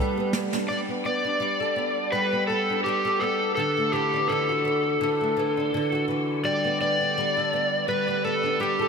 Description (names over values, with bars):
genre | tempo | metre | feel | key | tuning
acoustic pop | 83 BPM | 4/4 | swing 55% on 16ths | G major | A4 = 441 Hz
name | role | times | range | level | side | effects
flamenco guitar | accompaniment | 0.0-8.9 s | D3 to A4 | -27 LUFS | equal | double-tracked left and right
snare drum | drums | 0.3-0.7 s | none | -27 LUFS | right 1 dB | none
overdriven slide guitar | melody | 0.7-8.9 s | G4 to D5 | -24 LUFS | left 1 dB | ping-pong delay
room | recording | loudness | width
wet lush hall reverb, RT60 2.6 s | dreamy mix soaked in reverb | -22 LUFS | side -5 dB against mid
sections
0.7-8.9 A section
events
drum fill 0.0-0.7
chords
0.0 Gadd9; 3.6 Dadd9; 6.4 Gadd9